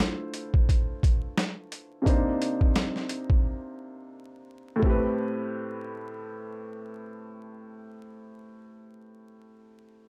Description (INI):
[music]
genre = hip hop, boom-bap hip-hop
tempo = 87 BPM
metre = 4/4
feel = swing 58% on 16ths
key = A minor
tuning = A4 = 440 Hz
[part]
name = warm upright piano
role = accompaniment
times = 0.0-10.1 s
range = A2 to C5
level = -34 LUFS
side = equal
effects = high-pass filter, low-pass filter, plate reverb
[part]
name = boom bap sampler-style drum kit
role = drums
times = 0.0-5.0 s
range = hi-hat, kick drum, snare drum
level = -26 LUFS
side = equal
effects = none
[sound]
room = light reverb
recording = dark, warm production, vinyl crackle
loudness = -27 LUFS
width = mono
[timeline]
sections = 0.0-4.8 A section; 4.8-7.6 B section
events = break 3.4-4.8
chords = 0.0 Dm7; 2.1 Cm7; 4.8 Am7